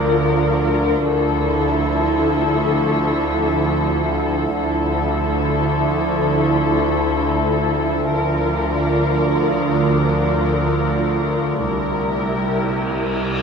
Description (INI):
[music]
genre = cinematic, suspense film score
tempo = free time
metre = none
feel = none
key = D minor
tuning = A4 = 436 Hz
[part]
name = muted symphonic violin section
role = melody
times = 0.0-13.4 s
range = A4 to Bb4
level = -24 LUFS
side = left 7 dB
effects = none
[part]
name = muted symphonic viola section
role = accompaniment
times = 0.0-13.4 s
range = F3 to F4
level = -23 LUFS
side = right 4 dB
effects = none
[part]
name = glassy FM pad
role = sustained chords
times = 0.0-13.4 s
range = E4 to E5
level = -24 LUFS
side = left 1 dB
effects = ensemble chorus, built-in reverb
[part]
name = muted symphonic cello section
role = bass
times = 0.0-13.4 s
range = C3 to D3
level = -24 LUFS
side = right 2 dB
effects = none
[part]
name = muted symphonic double bass section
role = bass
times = 0.0-13.4 s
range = C2 to D2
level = -25 LUFS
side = right 3 dB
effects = none
[part]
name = overtone-sweeping drone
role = drone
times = 0.0-13.4 s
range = C2 to D2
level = -24 LUFS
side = left 2 dB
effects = chorus, built-in reverb
[part]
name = cymbal swell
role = sound effects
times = 12.6-13.4 s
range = none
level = -30 LUFS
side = equal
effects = none
[sound]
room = moderate concert hall reverb, RT60 1.8 s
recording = close, detailed microphones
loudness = -16 LUFS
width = side -6 dB against mid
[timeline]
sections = 0.0-13.4 A section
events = cymbal swell 12.6-13.4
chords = 0.0 Bb/D; 1.1 Dmadd9; 8.1 Bb/D; 11.7 C7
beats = free time